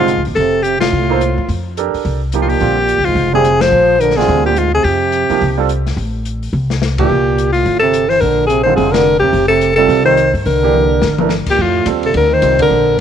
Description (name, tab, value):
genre	jazz, small-group swing and bop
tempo	214 BPM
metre	4/4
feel	swing 60% on 8ths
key	F mixolydian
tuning	A4 = 445 Hz
part	warm alto saxophone	melody	0.0-13.0 s	F4 to C5	-13 LUFS	left 3 dB	none
part	mellow trombone	second line	0.0-13.0 s	Ab2 to F3	-19 LUFS	right 10 dB	none
part	clear grand piano	accompaniment	0.0-12.7 s	D3 to C5	-20 LUFS	right 12 dB	none
part	upright bass	bass	0.0-13.0 s	F1 to G2	-18 LUFS	left 1 dB	none
part	open jazz drum kit	drums	0.1-12.6 s	crash cymbal, hi-hat, kick drum, ride cymbal, snare drum, toms	-24 LUFS	left 6 dB	none
room	light reverb, studio ambience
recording	1960s-style stereo with parts hard left and right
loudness	-11 LUFS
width	side -9 dB against mid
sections	0.0-11.6 A section; 11.6-13.0 A section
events	band accent 0.8, 3.6, 6.9, 8.9, 12.6; drum fill 6.5-7.1, 10.7-11.3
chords	0.4 F13; 2.6 Bb13; 4.8 Fadd9; 7.1 C5; 8.2 Bb69; 9.3 F9; 10.5 C9; 11.6 F13